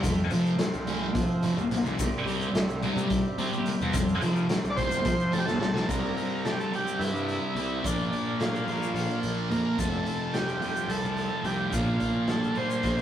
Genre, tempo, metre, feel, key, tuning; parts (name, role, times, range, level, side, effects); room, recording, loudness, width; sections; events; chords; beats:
psychedelic rock; 216 BPM (eighths); 7/8; straight; C mixolydian; A4 = 438 Hz
overdriven tonewheel organ; sustained chords; 0.0-13.0 s; G3 to F4; -38 LUFS; right 3 dB; slow rotary speaker
thick fuzz guitar; riff; 0.0-13.0 s; F2 to C4; -29 LUFS; equal; distortion, phaser
fuzz picked electric bass; bass; 0.0-13.0 s; F1 to F3; -31 LUFS; equal; overdrive
raw garage drum kit; drums; 0.0-13.0 s; hi-hat, kick drum, snare drum; -32 LUFS; equal
tube shaker; percussion; 0.0-13.0 s; -45 LUFS; left 7 dB
overdriven combo organ; melody; 4.7-13.0 s; D4 to D5; -31 LUFS; equal; analog delay
moderate stone room reverb, RT60 1.2 s; rough rehearsal-room recording; -25 LUFS; side -10 dB against mid
0.0-5.9 A section; 5.9-13.0 B section
drum fill 5.5-5.9
0.0 F; 2.0 C; 3.9 F; 5.9 C; 7.8 Bb; 9.8 F; 11.7 Bb
| 0.04 0.32 0.60 0.88 1.16 1.43 1.71 | 1.99 2.27 2.55 2.83 3.10 3.38 3.66 | 3.94 4.22 4.50 4.77 5.05 5.33 5.61 | 5.89 6.17 6.44 6.72 7.00 7.28 7.56 | 7.84 8.12 8.39 8.67 8.95 9.23 9.51 | 9.79 10.06 10.34 10.62 10.90 11.18 11.45 | 11.73 12.01 12.29 12.56 12.84